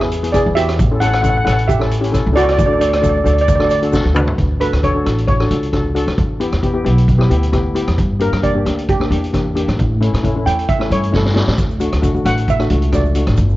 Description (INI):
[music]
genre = calypso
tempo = 133 BPM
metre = 4/4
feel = swing 53% on 16ths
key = D major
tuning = A4 = 439 Hz
[part]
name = steel pan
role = melody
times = 0.0-13.1 s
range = F#4 to G5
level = -18 LUFS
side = right 1 dB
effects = none
[part]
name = steel pan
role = accompaniment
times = 0.0-13.4 s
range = A3 to B4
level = -20 LUFS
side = left 2 dB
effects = none
[part]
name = upright bass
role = bass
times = 0.0-13.6 s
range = G1 to A2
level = -17 LUFS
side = equal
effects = none
[part]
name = street-band drum kit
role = drums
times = 0.0-13.5 s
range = hi-hat, kick drum, rim click, snare drum, toms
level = -20 LUFS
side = equal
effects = none
[part]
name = tube shaker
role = percussion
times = 0.1-4.3, 11.6-13.5 s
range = none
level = -43 LUFS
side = right 8 dB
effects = none
[sound]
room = little or no reverb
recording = worn, warbling old tape, cassette tape, warbly pitch drift, nothing above 7.7 kHz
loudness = -13 LUFS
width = side -17 dB against mid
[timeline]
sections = 0.0-4.4 A section; 4.4-13.6 B section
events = drum fill 3.9-4.4, 11.1-11.6; steel pan solo 4.4-13.6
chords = 0.0 E; 0.8 A7; 2.6 D; 4.4 Dmaj7; 6.2 Em7; 8.0 Gm6; 9.8 A7; 11.6 D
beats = 0.34 | 0.79 1.23 1.68 2.13 | 2.58 3.03 3.48 3.93 | 4.38 4.83 5.28 5.73 | 6.18 6.63 7.08 7.53 | 7.98 8.43 8.88 9.33 | 9.78 10.23 10.68 11.13 | 11.58 12.03 12.48 12.93 | 13.38